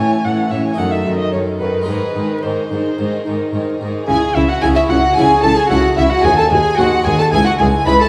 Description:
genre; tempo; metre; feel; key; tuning
classical, baroque-style concerto movement with solo episodes; 111 BPM; 4/4; straight; C# minor; A4 = 440 Hz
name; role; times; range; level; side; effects
warm chamber violin section; melody; 0.0-8.1 s; G#4 to B5; -22 LUFS; equal; none
warm violin; melody; 0.0-8.1 s; B4 to B5; -23 LUFS; equal; none
warm chamber violin section; second line; 0.0-8.1 s; C#4 to B4; -22 LUFS; equal; none
harpsichord; accompaniment; 0.0-8.1 s; C#2 to C#5; -25 LUFS; equal; none
warm symphonic viola section; accompaniment; 0.0-7.9 s; D#3 to F#4; -24 LUFS; equal; none
warm chamber cello section; bass; 0.0-7.9 s; C#2 to C#3; -24 LUFS; equal; none
rich chamber double bass section; bass; 4.1-7.9 s; C#2 to D#2; -23 LUFS; equal; none
room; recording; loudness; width
wet recital hall reverb, RT60 1.5 s; recorded in a church or concert hall, vinyl crackle; -15 LUFS; mono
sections
0.0-4.1 A section; 4.1-8.1 B section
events
none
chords
0.0 A; 0.8 D#dim/F#; 1.9 G#; 4.1 C#m; 6.2 G#7/D#; 7.3 C#m

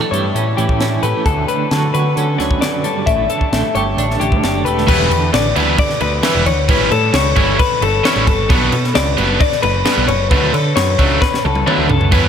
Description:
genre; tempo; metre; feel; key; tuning
math rock and midwest emo; 133 BPM; 4/4; straight; D major; A4 = 440 Hz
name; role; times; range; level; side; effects
twelve-string electric guitar; accompaniment; 0.0-6.7 s; D2 to G4; -22 LUFS; right 6 dB; tremolo
clean electric guitar; arpeggios; 0.0-12.3 s; G4 to E5; -18 LUFS; left 6 dB; lush chorus, diffuse ambient delay
growling picked electric bass; bass; 0.1-12.3 s; E1 to D3; -18 LUFS; equal; overdrive
crisp fusion drum kit; drums; 0.1-12.2 s; crash cymbal, hi-hat, kick drum, snare drum, toms; -18 LUFS; right 1 dB; none
cranked stack guitar; riff; 4.9-12.3 s; B2 to E4; -18 LUFS; right 2 dB; overdrive
room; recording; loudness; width
moderate huge ambient reverb, RT60 8.7 s; dreamy mix soaked in reverb; -12 LUFS; side -8 dB against mid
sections
0.0-4.9 A section; 4.9-12.3 B section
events
drum fill 11.2-12.1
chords
0.0 A7; 1.3 Dmaj7; 3.1 A7sus4; 4.9 Em7; 6.7 A7; 8.5 Gmaj7; 10.3 Dmaj7

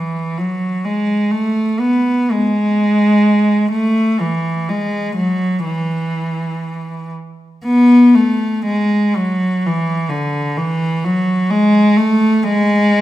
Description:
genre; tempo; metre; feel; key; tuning
classical, free, expressive piece for unaccompanied cello; 58-67 BPM; 4/4; rubato; unclear; A4 = 440 Hz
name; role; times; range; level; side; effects
rich cello; solo; 0.0-13.0 s; D3 to B3; -13 LUFS; equal; none
room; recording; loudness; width
wet recital hall reverb, RT60 1.4 s; minimal, uncompressed stereo recording; -13 LUFS; side -14 dB against mid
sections
0.0-13.0 A section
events
none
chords
none

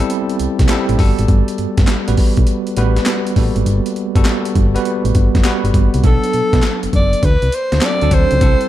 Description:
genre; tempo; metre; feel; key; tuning
R&B, new jack swing; 101 BPM; 4/4; swing 67% on 16ths; unclear; A4 = 440 Hz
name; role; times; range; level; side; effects
bell-like tine electric piano; accompaniment; 0.0-8.7 s; F#3 to B4; -19 LUFS; right 1 dB; medium stereo tremolo
breakbeat sampler-style drum kit; drums; 0.0-8.7 s; handclaps, hi-hat, kick drum, snare drum; -16 LUFS; equal; overdrive
solid FM bass; bass; 0.4-8.6 s; F#1 to B2; -16 LUFS; equal; none
group handclap; percussion; 0.7-8.0 s; none; -30 LUFS; left 3 dB; none
breathy alto saxophone; melody; 6.1-8.7 s; A4 to D5; -17 LUFS; equal; none
room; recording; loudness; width
little or no reverb; dark, warm production; -12 LUFS; side -13 dB against mid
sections
0.0-6.0 A section; 6.0-8.7 B section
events
none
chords
0.0 Am7; 1.0 Gmaj9; 6.0 Bm7; 7.2 D7

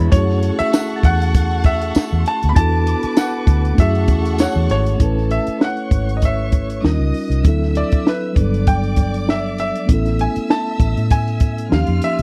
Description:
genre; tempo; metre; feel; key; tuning
lush 1970s-style soul; 98 BPM; 4/4; swing 54% on 16ths; unclear; A4 = 440 Hz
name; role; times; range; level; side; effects
bright baby grand piano; melody; 0.0-12.2 s; B4 to B5; -26 LUFS; equal; none
warm studio string section; second line; 0.0-12.2 s; E#4 to E#6; -32 LUFS; equal; none
mellow tine electric piano; accompaniment; 0.0-12.2 s; E#3 to B4; -25 LUFS; equal; none
vintage muted fingered electric bass; bass; 0.0-12.2 s; G1 to A2; -21 LUFS; equal; none
compact cocktail drum kit; drums; 0.1-12.2 s; hi-hat, kick drum, snare drum; -18 LUFS; equal; none
tambourine; percussion; 0.7-4.5 s; none; -37 LUFS; equal; none
glockenspiel with rubber mallets; texture; 0.7-6.8 s; D6 to A6; -38 LUFS; equal; none
room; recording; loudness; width
little or no reverb; dry, close 1970s-style studio recording; -17 LUFS; mono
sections
0.0-5.0 A section; 5.0-12.2 B section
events
none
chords
0.1 F#m7; 2.6 E7sus4; 3.8 F#m7; 5.0 Amaj7; 6.8 D#9; 7.4 D7; 8.4 Gmaj9; 9.9 Amaj7; 11.7 D#9

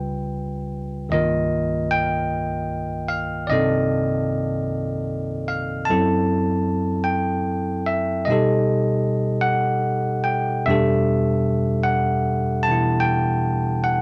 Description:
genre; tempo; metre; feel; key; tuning
jazz ballad; 50 BPM; 4/4; swing 68% on 8ths; unclear; A4 = 442 Hz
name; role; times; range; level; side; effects
bell-like tine electric piano; solo; 0.0-14.0 s; C2 to A5; -22 LUFS; equal; none
room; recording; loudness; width
wet studio reverb, RT60 0.5 s; none; -22 LUFS; mono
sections
0.0-14.0 A section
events
none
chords
0.0 C#7#11; 1.1 Cm7; 5.9 F#m7b5; 8.3 B7b13; 10.7 Em7

